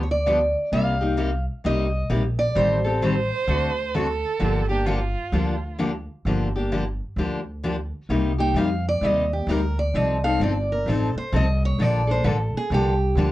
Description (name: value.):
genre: acoustic string swing (jazz manouche).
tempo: 130 BPM.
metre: 4/4.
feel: swing 63% on 8ths.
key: G minor, C minor from 8.1 s.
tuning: A4 = 440 Hz.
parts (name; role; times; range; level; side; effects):
picked steel-string acoustic guitar; melody; 0.0-3.9, 8.4-13.3 s; G4 to G5; -24 LUFS; right 1 dB; none.
upright bass; bass; 0.0-13.3 s; G1 to F2; -24 LUFS; equal; none.
picked steel-string acoustic guitar; accompaniment; 0.3-13.3 s; C3 to A4; -25 LUFS; left 2 dB; none.
rich violin; second line; 3.0-5.8 s; F4 to C5; -27 LUFS; right 5 dB; none.
room: light reverb.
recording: worn, warbling old tape, cassette tape, warbly pitch drift.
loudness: -20 LUFS.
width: side -16 dB against mid.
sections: 0.0-8.1 A section; 8.1-13.3 B section.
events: steel-string acoustic guitar solo 8.1-13.3.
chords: 0.0 G7; 0.7 Cm7; 2.6 Am7b5; 3.5 D7; 4.4 Gm7; 8.1 Cm7; 9.9 F7; 11.8 Bbmaj7.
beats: 0.27 | 0.73 1.19 1.65 2.11 | 2.57 3.03 3.49 3.95 | 4.41 4.87 5.33 5.79 | 6.25 6.71 7.17 7.63 | 8.09 8.55 9.02 9.48 | 9.94 10.40 10.86 11.32 | 11.79 12.25 12.71 13.17.